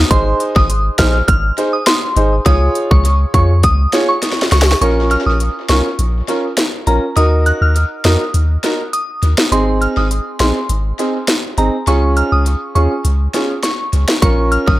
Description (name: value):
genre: dancehall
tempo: 102 BPM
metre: 4/4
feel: straight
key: Bb minor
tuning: A4 = 438 Hz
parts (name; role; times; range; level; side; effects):
- punchy sub bass; bass; 0.0-14.8 s; Ab1 to F2; -14 LUFS; equal; none
- soft synth bell; melody; 0.1-14.8 s; Bb5 to Gb6; -19 LUFS; equal; chorus, tape echo
- warm grand piano; accompaniment; 0.1-14.8 s; C4 to Db5; -19 LUFS; right 1 dB; tape echo
- island pop drum kit; drums; 0.1-14.8 s; hi-hat, kick drum, snare drum; -17 LUFS; equal; overdrive, tape echo
room: light reverb, digital ambience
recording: echo-heavy mix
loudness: -12 LUFS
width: side -16 dB against mid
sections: 0.0-4.8 A section; 4.8-14.8 B section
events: drum fill 4.2-4.8; break 4.8-14.2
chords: 0.1 Ab; 2.5 Db; 4.8 Bbm; 7.2 Ebm; 9.5 Ab; 11.9 Db; 14.2 Bbm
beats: | 0.11 0.69 1.28 1.87 | 2.46 3.05 3.64 4.22 | 4.81 5.40 5.99 6.58 | 7.17 7.75 8.34 8.93 | 9.52 10.11 10.70 11.28 | 11.87 12.46 13.05 13.64 | 14.22